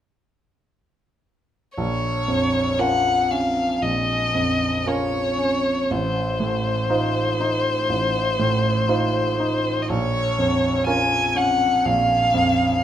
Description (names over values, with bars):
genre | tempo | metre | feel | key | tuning
classical, romantic duo for violin and grand piano | 60 BPM | 4/4 | rubato | Bb minor | A4 = 441 Hz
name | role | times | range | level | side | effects
clear violin | melody | 1.8-12.8 s | C5 to Ab5 | -21 LUFS | left 2 dB | none
clear grand piano | accompaniment | 1.8-12.8 s | A1 to C5 | -22 LUFS | right 2 dB | none
room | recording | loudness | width
moderate recital hall reverb, RT60 1.6 s | close, detailed microphones | -19 LUFS | side -10 dB against mid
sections
1.8-12.8 A section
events
none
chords
1.8 Bbm; 5.9 F7/A; 9.9 Bbm